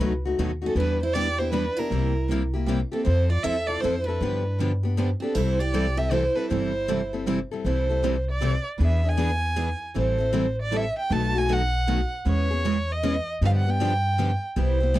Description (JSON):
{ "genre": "acoustic string swing (jazz manouche)", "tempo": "156 BPM", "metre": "3/4", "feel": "swing 63% on 8ths", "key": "C major", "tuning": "A4 = 439 Hz", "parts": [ { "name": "picked steel-string acoustic guitar", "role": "accompaniment", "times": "0.0-15.0 s", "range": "B2 to A4", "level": "-29 LUFS", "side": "left 5 dB", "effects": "none" }, { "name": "picked steel-string acoustic guitar", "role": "accompaniment", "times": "0.0-15.0 s", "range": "B2 to B4", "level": "-30 LUFS", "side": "right 7 dB", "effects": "none" }, { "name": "upright bass", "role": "bass", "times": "0.0-15.0 s", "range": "G1 to G2", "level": "-25 LUFS", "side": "equal", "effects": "none" }, { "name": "warm violin", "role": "melody", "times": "0.7-15.0 s", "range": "A4 to A5", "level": "-27 LUFS", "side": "right 2 dB", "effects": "none" }, { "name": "picked steel-string acoustic guitar", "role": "second line", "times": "0.7-7.2 s", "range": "C4 to A4", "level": "-34 LUFS", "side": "right 5 dB", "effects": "none" } ], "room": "little or no reverb", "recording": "dry, close 1970s-style studio recording", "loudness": "-22 LUFS", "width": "side -15 dB against mid", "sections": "0.0-7.6 A section; 7.6-15.0 B section", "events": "none", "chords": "0.0 B7; 0.8 Em7; 1.9 C7; 3.1 Fmaj7; 4.2 G7; 5.3 C6; 8.8 E7; 10.0 Am7; 11.1 B7; 12.3 E6; 13.4 G7" }